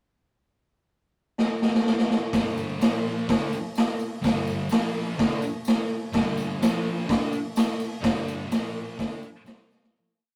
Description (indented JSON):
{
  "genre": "garage rock duo or trio",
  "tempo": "126 BPM",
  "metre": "4/4",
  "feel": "straight",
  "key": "G minor",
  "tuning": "A4 = 436 Hz",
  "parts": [
    { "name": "raw garage drum kit", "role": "drums", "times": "1.4-9.9 s", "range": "hi-hat, kick drum, snare drum", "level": "-26 LUFS", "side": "equal", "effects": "none" },
    { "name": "thick fuzz guitar", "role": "riff", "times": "2.3-9.9 s", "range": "G2 to D4", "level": "-33 LUFS", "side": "equal", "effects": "distortion" },
    { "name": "tambourine", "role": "percussion", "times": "2.3-9.9 s", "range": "none", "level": "-50 LUFS", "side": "equal", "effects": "none" }
  ],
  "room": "light reverb",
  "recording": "rough rehearsal-room recording",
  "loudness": "-26 LUFS",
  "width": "mono",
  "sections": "0.4-2.3 pickup bar; 2.3-9.9 riff",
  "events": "drum fill 1.4-2.3, 9.7; fade-out 8.0-9.9",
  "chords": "0.4 N.C.; 2.3 G5; 2.8 Bb5; 3.3 G5; 4.7 Bb5; 5.2 G5; 6.6 Bb5; 7.1 G5; 8.5 Bb5; 9.0 D5; 9.5 C5",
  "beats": "| 0.41 0.89 1.37 1.85 | 2.33 2.81 3.28 3.76 | 4.24 4.71 5.19 5.66 | 6.14 6.61 7.09 7.56 | 8.04 8.51 8.99 9.47"
}